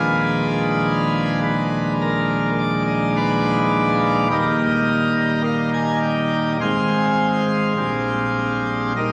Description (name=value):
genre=classical, chorale-style piece for pipe organ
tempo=52 BPM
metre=4/4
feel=rubato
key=unclear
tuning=A4 = 441 Hz
part: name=pipe organ, plenum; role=solo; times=0.0-9.1 s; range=Eb1 to Ab5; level=-20 LUFS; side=equal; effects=none
room=wet church reverb, RT60 2.6 s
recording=vinyl crackle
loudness=-20 LUFS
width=mono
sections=0.0-9.1 A section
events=none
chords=0.0 Ddim7/Eb; 4.3 Eb; 6.6 Fm/Ab; 7.8 Bb13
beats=0.84 2.01 3.16 | 4.31 5.45 6.60 7.76 | 8.96